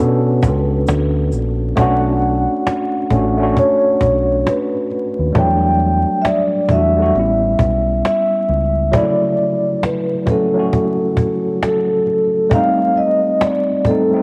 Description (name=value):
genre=lo-fi hip hop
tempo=67 BPM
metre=4/4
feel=swing 62% on 16ths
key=B minor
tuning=A4 = 439 Hz
part: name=vibraphone with soft mallets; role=melody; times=0.0-14.2 s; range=A4 to G5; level=-20 LUFS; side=equal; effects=low-pass filter, cassette tape
part: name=mellow tine electric piano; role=accompaniment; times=0.0-14.2 s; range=C#3 to A4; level=-21 LUFS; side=equal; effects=overdrive, low-pass filter, cassette tape
part: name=deep dub fingered electric bass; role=bass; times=0.0-8.9 s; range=A1 to B2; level=-20 LUFS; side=equal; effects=none
part: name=cajon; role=drums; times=0.4-14.1 s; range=none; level=-22 LUFS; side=equal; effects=cassette tape
part: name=egg shaker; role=percussion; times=0.4-1.6 s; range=none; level=-45 LUFS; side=equal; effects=none
room=light reverb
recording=home recording on cassette, vinyl crackle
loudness=-16 LUFS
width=mono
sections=0.0-1.8 A section; 1.8-14.2 A section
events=none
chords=0.0 Bm9; 5.3 Em11; 7.1 A9; 8.9 Dmaj7; 12.5 F13/G